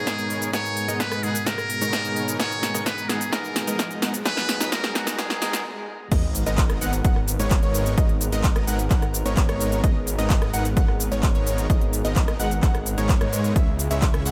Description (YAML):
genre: EDM, festival progressive house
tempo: 129 BPM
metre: 4/4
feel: straight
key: G# minor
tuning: A4 = 440 Hz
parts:
  - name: trumpet with metal mute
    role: melody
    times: 0.0-5.7 s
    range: F#4 to C#5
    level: -30 LUFS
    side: equal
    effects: digital delay
  - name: clean electric guitar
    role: accompaniment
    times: 0.0-5.6 s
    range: G#2 to B4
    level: -34 LUFS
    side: equal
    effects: vibrato effect, sidechain pumping, digital delay
  - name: lush unison pad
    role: sustained chords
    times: 0.0-14.3 s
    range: B2 to A#5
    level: -36 LUFS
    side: equal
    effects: chorus, sidechain pumping
  - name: dense compressed supersaw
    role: riff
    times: 0.0-14.3 s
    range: G#3 to F#5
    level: -33 LUFS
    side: equal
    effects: sidechain pumping, low-pass filter, digital delay
  - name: riser and sub drop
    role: sound effects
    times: 1.5-8.0 s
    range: none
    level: -39 LUFS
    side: equal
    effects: none
  - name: big-room dance drum kit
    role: drums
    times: 0.1-14.3 s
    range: crash cymbal, handclaps, hi-hat, rim click, shaker, snare drum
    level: -30 LUFS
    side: equal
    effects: none
  - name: electronic kick drum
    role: drums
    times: 0.1-14.1 s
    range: none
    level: -23 LUFS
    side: equal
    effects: high-pass filter on kick, high-pass filter on room
  - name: unison pluck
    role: arpeggios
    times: 6.1-14.3 s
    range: C#5 to F#5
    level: -34 LUFS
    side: equal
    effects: sidechain pumping, digital delay
  - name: detuned saw bass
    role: bass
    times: 6.1-14.3 s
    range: G#1 to G#2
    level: -28 LUFS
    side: equal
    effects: sidechain pumping
room: light reverb, digital ambience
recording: high-pass filter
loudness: -23 LUFS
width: mono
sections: 0.0-6.1 A section; 6.1-14.3 B section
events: build-up 0.0-6.1; drum fill 0.0-5.7; filter sweep on supersaw synth 0.0-6.1; break 5.7-6.1; drop 6.1-14.3; impact 6.1-8.0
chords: 0.0 G#madd9; 13.6 C#m